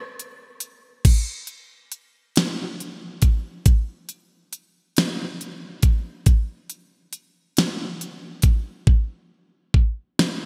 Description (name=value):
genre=R&B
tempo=46 BPM (dotted quarters)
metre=6/8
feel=straight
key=none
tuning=none
part: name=pop drum kit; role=drums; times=0.2-10.4 s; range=crash cymbal, hi-hat, kick drum, snare drum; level=-21 LUFS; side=equal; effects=gated reverb
room=light reverb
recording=bright 1980s-style digital production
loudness=-22 LUFS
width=mono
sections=0.0-1.0 A section; 1.0-10.5 B section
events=break 0.0-1.0; hi-hats muted 8.9-10.5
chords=none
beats=| 1.05 2.35 | 3.66 4.96 | 6.27 7.57 | 8.88 10.18